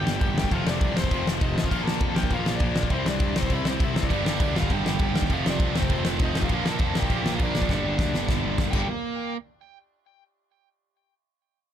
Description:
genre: punk rock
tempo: 201 BPM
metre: 4/4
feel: straight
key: G minor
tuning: A4 = 443 Hz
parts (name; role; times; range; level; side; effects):
- biting lead guitar; melody; 0.0-8.9 s; C4 to A5; -32 LUFS; left 1 dB; overdrive, ping-pong delay
- overdriven electric guitar; riff; 0.0-8.9 s; F2 to E4; -32 LUFS; equal; none
- tight distorted guitar; riff; 0.0-9.4 s; F2 to C4; -32 LUFS; left 15 dB; distortion
- fuzz picked electric bass; bass; 0.0-8.9 s; F1 to G2; -30 LUFS; equal; overdrive
- loose indie drum kit; drums; 0.1-8.8 s; crash cymbal, kick drum, snare drum; -25 LUFS; equal; none
- tight distorted guitar; riff; 4.1-9.4 s; F2 to Bb3; -31 LUFS; right 16 dB; distortion
room: little or no reverb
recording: none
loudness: -22 LUFS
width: side -10 dB against mid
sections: 0.0-8.9 A section; 8.9-10.1 B section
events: drum fill 7.7-8.9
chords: 0.0 Gm; 0.5 F; 1.7 Bb; 2.9 C; 4.1 Gm; 5.3 F; 6.5 Bb; 7.7 Gm; 8.9 N.C.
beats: 0.21 | 0.51 0.81 1.11 1.41 | 1.71 2.01 2.31 2.61 | 2.91 3.21 3.51 3.81 | 4.11 4.41 4.70 5.00 | 5.30 5.60 5.90 6.20 | 6.50 6.80 7.09 7.39 | 7.69 7.99 8.29 8.59 | 8.88 9.18

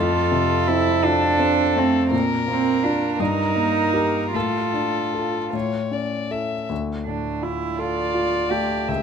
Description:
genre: classical, slow romantic movement for piano trio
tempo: 49-56 BPM (dotted quarters)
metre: 6/8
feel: rubato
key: D minor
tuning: A4 = 442 Hz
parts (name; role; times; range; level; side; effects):
- warm violin; melody; 0.0-9.0 s; A4 to E5; -26 LUFS; left 7 dB; none
- warm cello; second line; 0.0-8.9 s; C4 to G4; -22 LUFS; right 7 dB; none
- clear concert grand piano; accompaniment; 0.0-9.0 s; C#2 to Bb4; -24 LUFS; left 3 dB; none
room: moderate recital hall reverb, RT60 1.7 s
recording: close, detailed microphones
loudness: -19 LUFS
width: side -7 dB against mid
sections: 0.0-9.0 A section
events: none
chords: 0.0 F; 2.1 Bb; 3.2 Eb/G; 4.3 Dm/A; 5.5 A; 6.7 Dm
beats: 1.04 | 2.12 3.20 | 4.34 5.54 | 6.70 7.79 | 8.89

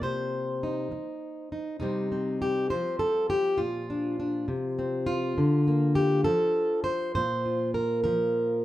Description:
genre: folk, solo fingerstyle acoustic guitar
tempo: 67 BPM (dotted quarters)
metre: 6/8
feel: straight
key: C dorian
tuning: A4 = 439 Hz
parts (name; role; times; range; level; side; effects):
- fingerpicked plugged-in steel-string acoustic guitar; solo; 0.0-8.6 s; Bb2 to C5; -25 LUFS; equal; none
room: wet studio reverb, RT60 0.6 s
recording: heard from further back in the room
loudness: -25 LUFS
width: side -14 dB against mid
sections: 0.0-1.8 A section; 1.8-8.6 B section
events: none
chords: 0.0 Cm; 2.7 F5; 3.6 Bb; 4.5 Csus4; 5.4 Bb/D; 6.3 N.C.; 7.2 Bbsus2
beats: | 0.01 0.91 | 1.80 2.70 | 3.59 4.48 | 5.37 6.26 | 7.16 8.05

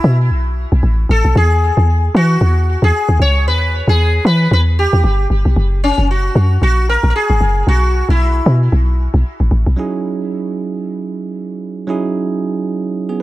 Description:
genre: amapiano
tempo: 114 BPM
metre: 4/4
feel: swing 58% on 16ths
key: E major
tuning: A4 = 441 Hz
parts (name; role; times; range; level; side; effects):
- sitar; melody; 0.0-8.6 s; C#4 to C#5; -18 LUFS; left 1 dB; tape echo
- deep log drum bass; bass; 0.0-9.8 s; F#1 to E3; -12 LUFS; equal; none
- bell-like tine electric piano; accompaniment; 9.8-13.2 s; F#3 to G#4; -19 LUFS; right 4 dB; none
room: small room ambience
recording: none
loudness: -12 LUFS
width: side -16 dB against mid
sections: 0.0-9.8 A section; 9.8-13.2 B section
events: drop 0.0-9.8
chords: 0.0 B7(no3); 1.4 E; 5.0 G; 5.6 F#; 7.7 Bsus4; 9.8 Emaj13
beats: 0.30 0.83 | 1.35 1.88 2.41 2.93 | 3.46 3.99 4.51 5.04 | 5.57 6.09 6.62 7.14 | 7.67 8.20 8.72 9.25 | 9.78 10.30 10.83 11.35 | 11.88 12.41 12.93

